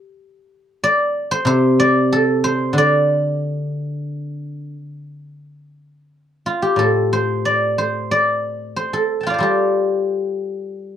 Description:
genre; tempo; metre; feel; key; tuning
chinese traditional, Chinese solo plucked strings; 92 BPM; 4/4; rubato; D yu mode; A4 = 440 Hz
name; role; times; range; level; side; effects
guzheng; solo; 0.0-11.0 s; A2 to A5; -16 LUFS; equal; none
room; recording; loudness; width
light reverb; dry, close 1970s-style studio recording; -16 LUFS; side -9 dB against mid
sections
0.0-5.4 A section; 5.4-11.0 B section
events
none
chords
none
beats
| 0.19 0.83 1.46 2.10 | 2.75 3.40 4.06 4.75 | 5.44 6.11 6.79 7.45 | 8.11 8.76 9.41 10.06 | 10.71

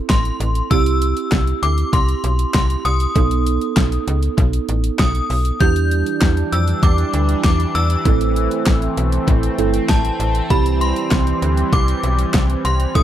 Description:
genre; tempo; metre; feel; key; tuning
synth-pop; 98 BPM; 4/4; straight; C major; A4 = 440 Hz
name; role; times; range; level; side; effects
muted felt-like synth keys; accompaniment; 0.0-13.0 s; B3 to A4; -23 LUFS; right 13 dB; chorus
synth chime; melody; 0.1-13.0 s; A5 to G6; -23 LUFS; left 2 dB; ensemble chorus, tape echo
slap-like FM bass; bass; 0.1-13.0 s; G1 to F2; -19 LUFS; left 1 dB; none
pop drum kit; drums; 0.1-13.0 s; handclaps, hi-hat, kick drum, snare drum; -17 LUFS; left 1 dB; overdrive
sweeping resonant pad; sustained chords; 5.6-13.0 s; D#3 to D4; -24 LUFS; equal; chorus
room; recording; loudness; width
light reverb, digital ambience; echo-heavy mix; -15 LUFS; side -11 dB against mid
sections
0.0-13.0 A section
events
none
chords
0.0 Am; 0.7 C; 3.2 B7; 5.6 Em7; 8.1 Am; 10.5 C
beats
0.10 | 0.71 1.32 1.93 2.54 | 3.16 3.77 4.38 4.99 | 5.61 6.22 6.83 7.44 | 8.05 8.67 9.28 9.89 | 10.50 11.12 11.73 12.34 | 12.95

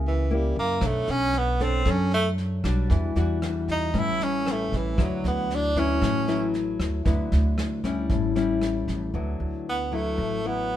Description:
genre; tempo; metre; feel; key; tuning
bossa nova; 115 BPM; 4/4; straight; D major; A4 = 439 Hz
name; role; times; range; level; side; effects
nylon-string guitar; accompaniment; 0.0-10.8 s; A2 to C#5; -28 LUFS; left 4 dB; none
upright bass; bass; 0.0-10.8 s; A1 to F#2; -27 LUFS; right 1 dB; none
breathy tenor saxophone; melody; 0.1-6.5, 9.7-10.8 s; E3 to E4; -26 LUFS; right 1 dB; none
vintage brush drum kit; drums; 0.8-8.9 s; kick drum, rim click, snare drum; -31 LUFS; equal; none
room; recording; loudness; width
light reverb; band playing live in one room; -22 LUFS; side -12 dB against mid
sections
0.0-9.1 A section; 9.1-10.8 B section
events
tenor saxophone solo 0.0-9.1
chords
0.0 F#7b9; 0.8 Bm9; 2.9 Em9; 3.9 A9; 5.0 D69; 8.1 A7; 9.1 D69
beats
0.29 | 0.81 1.33 1.85 2.38 | 2.90 3.42 3.94 4.46 | 4.97 5.50 6.01 6.54 | 7.05 7.58 8.10 8.62 | 9.14 9.66 10.18 10.70

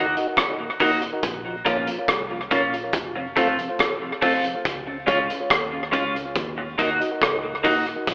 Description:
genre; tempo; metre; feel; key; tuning
roots reggae; 70 BPM; 4/4; straight; unclear; A4 = 442 Hz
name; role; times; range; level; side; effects
electric guitar at the edge of break-up; accompaniment; 0.0-7.9 s; Ab3 to Gb4; -27 LUFS; equal; subtle chorus, tape echo
mellow tonewheel organ; accompaniment; 0.0-8.0 s; Eb2 to Gb4; -31 LUFS; equal; slow rotary speaker, tape echo
vintage muted fingered electric bass; bass; 0.0-8.1 s; F1 to Eb2; -40 LUFS; equal; none
crunchy breakbeat drum kit; drums; 0.2-8.1 s; hi-hat, kick drum, rim click; -27 LUFS; equal; tape echo
room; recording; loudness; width
moderate spring reverb, RT60 2.7 s; telephone sound; -23 LUFS; mono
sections
0.0-8.1 A section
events
none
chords
0.0 Ebm; 1.2 Bbm; 2.9 F; 4.7 Db; 6.4 Ebm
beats
0.38 | 1.23 2.09 2.94 3.80 | 4.65 5.51 6.36 7.22 | 8.07

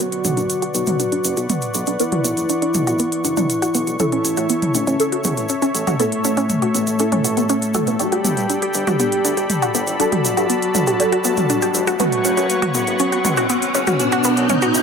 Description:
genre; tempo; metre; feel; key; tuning
melodic techno; 120 BPM; 4/4; straight; unclear; A4 = 440 Hz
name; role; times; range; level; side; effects
soft octave-layered synth lead; melody; 0.0-14.8 s; A3 to G4; -22 LUFS; left 1 dB; chorus, ping-pong delay
warm analog pad; sustained chords; 0.0-14.8 s; A4 to C#6; -26 LUFS; left 1 dB; chorus
wide unison pluck; arpeggios; 0.0-14.7 s; B3 to G4; -23 LUFS; equal; vintage 12-bit sampler grit, ping-pong delay
filtered dub chord stab; stabs; 0.0-14.8 s; F#3 to B4; -26 LUFS; right 1 dB; phaser, ensemble chorus, ping-pong delay
techno drum kit; drums; 0.0-14.8 s; hi-hat, toms; -23 LUFS; right 1 dB; overdrive, small room ambience
fat analog bass; bass; 0.2-14.8 s; F#1 to A2; -27 LUFS; equal; tube saturation, high-pass filter
egg shaker; percussion; 0.2-14.8 s; none; -27 LUFS; equal; none
riser; sound effects; 9.7-14.8 s; none; -25 LUFS; right 1 dB; none
room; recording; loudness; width
moderate lush hall reverb, RT60 2.5 s; none; -16 LUFS; side -6 dB against mid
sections
0.0-14.8 A section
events
build-up 0.0-14.8; filter sweep on synth arpeggio sound 0.0-14.8; filter sweep on synth stab 0.0-14.8; riser 9.7-14.8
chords
0.0 F#sus4; 4.0 A; 8.0 Gadd9; 12.0 F#sus4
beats
| 0.00 0.50 1.00 1.50 | 2.00 2.50 3.00 3.50 | 4.00 4.50 5.00 5.50 | 6.00 6.50 7.00 7.50 | 8.00 8.50 9.00 9.50 | 10.00 10.50 11.00 11.50 | 12.00 12.50 13.00 13.50 | 14.00 14.50

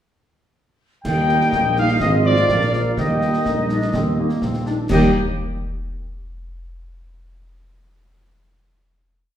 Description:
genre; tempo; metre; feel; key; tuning
military-style march for wind band; 125 BPM; 2/4; straight; Eb major; A4 = 440 Hz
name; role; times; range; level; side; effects
mellow trumpet section; melody; 1.0-5.1 s; D5 to G5; -23 LUFS; equal; none
warm woodwind section; second line; 1.0-5.1 s; Bb3 to G5; -29 LUFS; left 2 dB; none
concert snare drum, clash cymbals and concert bass drum; drums; 1.0-5.2 s; none; -27 LUFS; left 1 dB; none
flute section; second line; 1.1-5.2 s; G4 to G5; -24 LUFS; left 2 dB; none
dark trombone section; sustained chords; 1.1-5.1 s; F3 to C4; -27 LUFS; right 3 dB; none
mellow tuba; bass; 1.1-5.1 s; Ab1 to Eb2; -21 LUFS; right 2 dB; none
dark French horn section; accompaniment; 1.3-5.1 s; F3 to F4; -27 LUFS; left 3 dB; none
room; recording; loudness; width
wet recital hall reverb, RT60 1.3 s; recorded in a church or concert hall; -16 LUFS; side -10 dB against mid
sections
1.1-4.9 A section; 4.9-5.9 final chord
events
none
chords
1.1 Eb; 2.0 Fm/Ab; 2.5 Bb; 3.0 Eb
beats
| 1.05 1.53 | 2.02 2.50 | 2.98 3.46 | 3.94 4.42 | 4.91

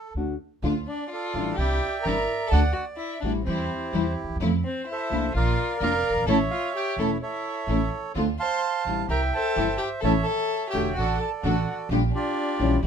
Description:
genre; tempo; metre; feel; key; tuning
tango; 128 BPM; 4/4; rubato; D minor; A4 = 441 Hz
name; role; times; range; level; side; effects
bandoneon; melody; 0.0-12.9 s; E4 to C6; -28 LUFS; right 4 dB; none
warm violin; second line; 0.0-12.9 s; C4 to C5; -31 LUFS; left 3 dB; none
upright bass; bass; 0.1-12.9 s; E1 to F2; -26 LUFS; right 1 dB; none
nylon-string guitar; accompaniment; 0.2-12.8 s; C3 to F#4; -26 LUFS; left 3 dB; none
rich studio string section; stabs; 0.6-12.9 s; F3 to A4; -33 LUFS; equal; none
room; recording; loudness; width
light reverb; minimal, uncompressed stereo recording; -23 LUFS; side -7 dB against mid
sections
0.6-12.9 A section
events
none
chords
0.0 D; 0.6 Dm; 1.6 Cadd9; 2.5 D; 3.5 C/E; 4.4 Fmaj7; 5.3 Bb; 6.3 A; 8.2 Dm7; 9.1 C; 10.0 A; 11.0 D/A; 11.9 Gm7/Bb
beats
0.16 | 0.64 1.11 1.59 2.06 | 2.53 3.00 3.47 3.94 | 4.41 4.87 5.34 5.80 | 6.27 6.74 7.21 7.68 | 8.15 8.63 9.10 9.57 | 10.03 10.50 10.97 11.44 | 11.90 12.37 12.84

